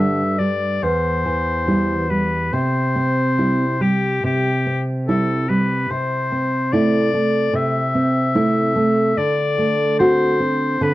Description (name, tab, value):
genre	romantic duo for oboe and classical guitar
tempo	72 BPM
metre	4/4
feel	rubato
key	unclear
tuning	A4 = 439 Hz
part	clear oboe	melody	0.0-10.9 s	G4 to E5	-21 LUFS	left 3 dB	none
part	nylon-string guitar	accompaniment	0.0-10.9 s	E2 to F#4	-18 LUFS	right 1 dB	none
room	small room ambience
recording	dry, close 1970s-style studio recording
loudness	-16 LUFS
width	side -16 dB against mid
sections	0.0-10.9 A section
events	none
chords	0.0 G5; 0.8 C/E; 2.5 C; 5.9 Am/C; 9.2 D7